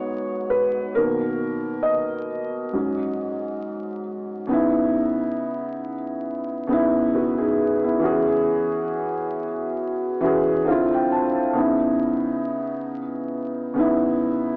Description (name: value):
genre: hip hop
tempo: 68 BPM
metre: 4/4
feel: swing 57% on 16ths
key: C# dorian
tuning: A4 = 440 Hz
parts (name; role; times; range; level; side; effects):
- felt-muted upright piano; solo; 0.0-14.6 s; G#2 to A5; -23 LUFS; equal; low-pass filter, cassette tape
room: moderate lush hall reverb, RT60 2.4 s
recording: home recording on cassette, vinyl crackle, AM radio sound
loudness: -23 LUFS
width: mono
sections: 0.0-4.5 A section; 4.5-14.6 B section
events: felt piano solo 0.0-4.5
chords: 0.0 G#m7; 1.0 Bmaj7; 2.7 G#7sus4; 4.5 C#m9; 8.0 E69; 10.7 Dm9; 11.6 C#m9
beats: 0.08 | 0.96 1.85 2.73 3.61 | 4.49 5.38 6.26 7.14 | 8.02 8.91 9.79 10.67 | 11.55 12.44 13.32 14.20